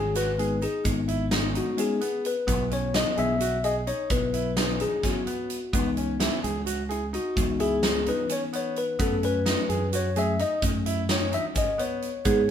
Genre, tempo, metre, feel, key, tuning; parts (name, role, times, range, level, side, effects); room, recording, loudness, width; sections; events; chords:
progressive instrumental, band music in an uneven meter; 258 BPM (eighths); 7/8; straight; A4 = 439 Hz
bell-like tine electric piano; accompaniment; 0.0-12.5 s; E3 to E5; -27 LUFS; left 4 dB
clear grand piano; arpeggios; 0.0-12.5 s; B3 to G#4; -33 LUFS; right 3 dB
fingered electric bass; bass; 0.0-12.5 s; G#1 to G#2; -30 LUFS; right 1 dB
huge arena drum kit; drums; 0.2-12.4 s; hi-hat, kick drum, snare drum; -30 LUFS; right 1 dB
egg shaker; percussion; 0.2-12.5 s; -40 LUFS; right 6 dB
vibraphone with medium hard mallets; second line; 12.3-12.5 s; G#4; -22 LUFS; right 8 dB
moderate stone room reverb, RT60 0.9 s; band playing live in one room; -24 LUFS; side -9 dB against mid
0.0-12.5 A section
tine electric piano solo 0.0-12.5
0.0 G#m; 2.5 Bsus4; 5.7 C#m7; 9.0 F#m